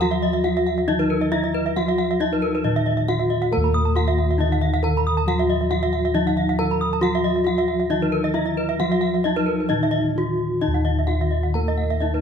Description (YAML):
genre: Balinese gamelan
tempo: 137 BPM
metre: 4/4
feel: straight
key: Eb pelog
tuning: A4 = 440 Hz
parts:
  - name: gamelan-type bronze metallophone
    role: melody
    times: 0.0-12.2 s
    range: Eb4 to Bb4-45c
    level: -24 LUFS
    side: equal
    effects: none
  - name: gamelan-type bronze metallophone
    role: accompaniment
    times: 0.0-12.2 s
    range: Eb3 to Bb3-45c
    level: -27 LUFS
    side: left 1 dB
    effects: none
  - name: gamelan-type bronze metallophone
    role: arpeggios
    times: 0.0-12.1 s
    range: Bb4-45c to Eb6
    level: -28 LUFS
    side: left 7 dB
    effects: none
  - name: gamelan-type bossed gongs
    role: bass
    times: 0.0-12.2 s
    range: Eb2 to Bb4-45c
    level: -24 LUFS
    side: left 1 dB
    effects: none
  - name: gamelan-type bronze metallophone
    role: arpeggios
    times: 0.1-12.2 s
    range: Cb5-40c to Cb6-40c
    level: -27 LUFS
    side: right 8 dB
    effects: none
room: light reverb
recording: close, detailed microphones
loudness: -19 LUFS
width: side -7 dB against mid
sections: 0.0-10.6 A section; 10.6-12.2 B section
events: none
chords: none